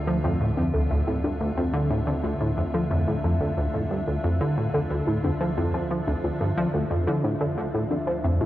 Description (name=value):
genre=ambient, sequencer-driven space music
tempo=90 BPM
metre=4/4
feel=straight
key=D minor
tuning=A4 = 440 Hz
part: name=evolving wavetable pad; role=sustained chords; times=0.0-8.5 s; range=D3 to E5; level=-32 LUFS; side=equal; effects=chorus, built-in reverb
part: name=warbly dusty pluck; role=arpeggios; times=0.0-8.5 s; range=D4 to E5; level=-32 LUFS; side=left 1 dB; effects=chorus, auto-pan, tape echo
part: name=analog drone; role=bass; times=0.0-8.5 s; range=D2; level=-33 LUFS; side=equal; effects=chorus
part: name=plucky analog bass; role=riff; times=0.1-8.5 s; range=D2 to F3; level=-24 LUFS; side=equal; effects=analog chorus, tape echo
room=wet huge ambient reverb, RT60 8.8 s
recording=worn, warbling old tape, cassette tape, warbly pitch drift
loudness=-23 LUFS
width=side -14 dB against mid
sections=0.0-8.5 A section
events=none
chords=0.0 Dmadd9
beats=0.07 0.74 | 1.41 2.08 2.74 3.41 | 4.08 4.74 5.41 6.08 | 6.74 7.41 8.07